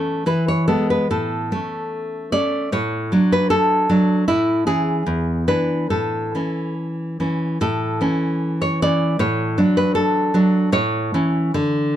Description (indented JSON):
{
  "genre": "romantic piece for solo classical guitar",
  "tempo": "68-80 BPM",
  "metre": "2/4",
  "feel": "rubato",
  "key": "A major",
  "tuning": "A4 = 440 Hz",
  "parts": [
    { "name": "nylon-string guitar", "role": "solo", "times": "0.0-11.9 s", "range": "E2 to D5", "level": "-17 LUFS", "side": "equal", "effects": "none" }
  ],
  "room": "light reverb",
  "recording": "dark, warm production",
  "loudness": "-17 LUFS",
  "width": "side -11 dB against mid",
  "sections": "0.0-7.6 A section; 7.6-12.0 A section",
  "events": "none",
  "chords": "0.3 E; 1.1 A; 2.7 D/A; 4.3 A; 5.1 E7; 5.9 A; 9.2 D/A; 10.7 A",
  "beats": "0.27 | 1.10 1.94 | 2.73 3.50 | 4.27 5.05 | 5.89 6.76 | 7.61 8.40 | 9.19 9.95 | 10.72 11.54"
}